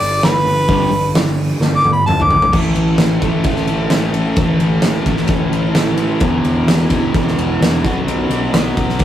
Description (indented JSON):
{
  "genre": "garage rock duo or trio",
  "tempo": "130 BPM",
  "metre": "4/4",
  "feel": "straight",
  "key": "unclear",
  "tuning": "A4 = 440 Hz",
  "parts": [
    { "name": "clear harmonica", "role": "melody", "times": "0.0-2.5 s", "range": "B4 to D6", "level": "-14 LUFS", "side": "equal", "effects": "overdrive" },
    { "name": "fuzz picked electric bass", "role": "bass", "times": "0.0-9.0 s", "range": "E1 to B1", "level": "-20 LUFS", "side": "equal", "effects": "overdrive" },
    { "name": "oversized low-tuned drum kit", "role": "drums", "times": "0.0-9.0 s", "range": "crash cymbal, hi-hat, kick drum, ride cymbal, snare drum, toms", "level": "-16 LUFS", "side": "equal", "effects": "none" },
    { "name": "fuzz guitar", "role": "riff", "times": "0.7-9.0 s", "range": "E2 to B3", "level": "-18 LUFS", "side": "equal", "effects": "distortion" }
  ],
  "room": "moderate studio reverb, RT60 0.6 s",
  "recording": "rough rehearsal-room recording",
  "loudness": "-13 LUFS",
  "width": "side -11 dB against mid",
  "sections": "0.0-2.5 A section; 2.5-9.0 B section",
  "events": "harmonica solo 0.0-2.5; drum fill 1.6-2.5",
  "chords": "0.0 G; 2.5 A5; 6.2 E5; 7.8 B5"
}